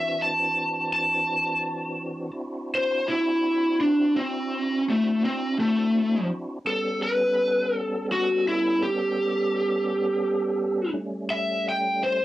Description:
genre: blues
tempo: 56 BPM (dotted quarters)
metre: 12/8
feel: straight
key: unclear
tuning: A4 = 440 Hz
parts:
  - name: lead guitar through a small cranked amp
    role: melody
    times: 0.0-12.2 s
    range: A3 to A5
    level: -22 LUFS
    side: equal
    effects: overdrive, cassette tape
  - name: tonewheel organ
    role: sustained chords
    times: 0.0-12.2 s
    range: E3 to A4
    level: -31 LUFS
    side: equal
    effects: slow rotary speaker, overdrive, chorus vibrato
room: light reverb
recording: home recording on cassette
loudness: -22 LUFS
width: side -15 dB against mid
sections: 0.0-12.2 A section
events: lead electric guitar solo 0.0-12.2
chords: 0.0 D9; 6.6 A9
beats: 0.20 1.27 | 2.34 3.41 4.49 5.56 | 6.63 7.71 8.79 9.86 | 10.94 12.01

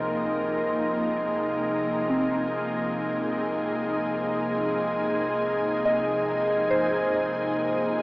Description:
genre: ambient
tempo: free time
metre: none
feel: none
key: unclear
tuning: A4 = 440 Hz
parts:
  - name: ethereal airy pad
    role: sustained chords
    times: 0.0-8.0 s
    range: C3 to Ab4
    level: -27 LUFS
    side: equal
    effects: ensemble chorus, built-in reverb
  - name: soft synth bell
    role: arpeggios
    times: 0.0-8.0 s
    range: C4 to C6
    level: -29 LUFS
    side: equal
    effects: chorus, diffuse ambient delay
  - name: warm sub bass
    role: bass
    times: 0.0-8.0 s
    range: Bb1 to Db2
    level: -54 LUFS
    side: equal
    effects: none
  - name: pedal harmonium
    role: drone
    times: 0.0-8.0 s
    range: Ab3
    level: -28 LUFS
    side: equal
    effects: none
room: wet cathedral reverb, RT60 5.0 s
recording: in a vast, echoing space, AM radio sound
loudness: -23 LUFS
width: side -24 dB against mid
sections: 0.0-8.0 A section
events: fade-out on synth bell 0.0-8.0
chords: 0.0 Dbmaj7; 2.7 Fm7/C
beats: free time

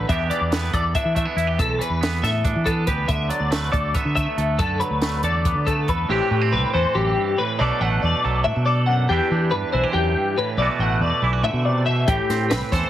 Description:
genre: math rock and midwest emo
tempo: 280 BPM (eighths)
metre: 7/8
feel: straight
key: E minor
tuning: A4 = 440 Hz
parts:
  - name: twangy electric guitar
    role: accompaniment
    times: 0.0-12.9 s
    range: E2 to A4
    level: -25 LUFS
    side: right 6 dB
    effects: spring reverb
  - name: twelve-string electric guitar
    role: arpeggios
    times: 0.0-12.9 s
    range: G4 to F#5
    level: -23 LUFS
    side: left 4 dB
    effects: ensemble chorus
  - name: fingered electric bass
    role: bass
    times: 0.0-12.8 s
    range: A1 to E3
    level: -23 LUFS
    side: equal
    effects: none
  - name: compact cocktail drum kit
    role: drums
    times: 0.1-6.0, 12.1-12.8 s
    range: hi-hat, kick drum, snare drum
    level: -25 LUFS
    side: equal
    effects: none
room: little or no reverb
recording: heavily compressed radio sound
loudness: -18 LUFS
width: side -12 dB against mid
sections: 0.0-6.1 A section; 6.1-12.9 B section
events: none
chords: 0.1 Em7; 3.1 Bm7/D; 6.1 Am11; 7.6 Bm7; 9.1 Em9; 10.6 B7sus4; 12.1 Am9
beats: | 0.09 0.30 0.52 0.73 0.94 1.16 1.37 | 1.59 1.80 2.02 2.23 2.45 2.66 2.88 | 3.09 3.31 3.52 3.74 3.95 4.17 4.38 | 4.59 4.81 5.02 5.24 5.45 5.67 5.88 | 6.09 6.31 6.52 6.74 6.95 7.16 7.38 | 7.59 7.80 8.02 8.23 8.45 8.66 8.87 | 9.09 9.30 9.51 9.73 9.94 10.15 10.37 | 10.58 10.79 11.01 11.22 11.44 11.65 11.86 | 12.08 12.29 12.50 12.72

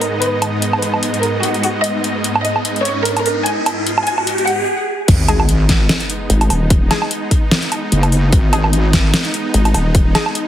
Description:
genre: heavy wobble dubstep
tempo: 148 BPM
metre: 4/4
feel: swing 55% on 16ths, half-time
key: G# minor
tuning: A4 = 440 Hz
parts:
  - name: rich chamber violin section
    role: melody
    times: 0.0-4.6 s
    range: F#4 to G#5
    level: -20 LUFS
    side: right 1 dB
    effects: dub echo
  - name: supersaw chords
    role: sustained chords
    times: 0.0-10.5 s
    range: G#2 to D#5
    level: -22 LUFS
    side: right 1 dB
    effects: sidechain pumping
  - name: dubstep drum kit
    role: drums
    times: 0.0-10.4 s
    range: crash cymbal, hi-hat, snare drum, woodblock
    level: -18 LUFS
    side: right 1 dB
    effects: overdrive
  - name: riser and sub drop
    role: sound effects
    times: 0.5-6.7 s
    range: none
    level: -23 LUFS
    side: equal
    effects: none
  - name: wobble bass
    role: bass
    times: 5.1-9.1 s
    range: F#1 to G#1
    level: -14 LUFS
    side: equal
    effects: chorus, overdrive
  - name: electronic kick drum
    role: drums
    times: 5.1-10.0 s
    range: none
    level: -14 LUFS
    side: equal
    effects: overdrive
  - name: orchestra-hit-like synth stab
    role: stabs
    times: 5.3-10.3 s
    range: G#3 to G#4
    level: -25 LUFS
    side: left 3 dB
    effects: built-in reverb, dub echo
  - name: vowel-sweep wobble bass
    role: bass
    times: 6.3-6.9, 9.5-10.1 s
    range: D#1 to G#1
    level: -14 LUFS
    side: equal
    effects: chorus, overdrive
room: light reverb, digital ambience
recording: heavily compressed radio sound, multiband compression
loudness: -13 LUFS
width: side -11 dB against mid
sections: 0.0-5.1 A section; 5.1-10.5 B section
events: build-up 0.0-5.1; riser 0.5-4.7; stop 4.7-5.1; drop 5.1-10.5; impact 5.1-6.7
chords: 0.0 G#m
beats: | 0.22 0.62 1.03 1.43 | 1.84 2.24 2.65 3.06 | 3.46 3.87 4.27 4.68 | 5.08 5.49 5.89 6.30 | 6.70 7.11 7.51 7.92 | 8.33 8.73 9.14 9.54 | 9.95 10.35

